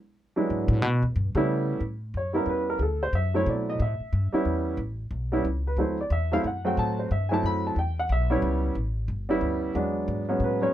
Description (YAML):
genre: jazz piano trio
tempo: 182 BPM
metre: 3/4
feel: swing 62% on 8ths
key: A mixolydian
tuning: A4 = 435 Hz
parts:
  - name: warm upright piano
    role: melody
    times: 0.4-10.7 s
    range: F#3 to B5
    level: -26 LUFS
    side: right 1 dB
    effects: none
  - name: upright bass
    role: bass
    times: 0.5-10.7 s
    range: G1 to C#3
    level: -27 LUFS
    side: equal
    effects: none
room: little or no reverb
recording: close, detailed microphones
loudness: -24 LUFS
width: side -12 dB against mid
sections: 0.0-1.8 A section; 1.8-10.7 B section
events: upright bass solo 0.0-1.8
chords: 0.0 E9; 0.8 A9; 2.8 D9; 3.8 A9; 5.8 D9; 7.8 A9; 9.7 E9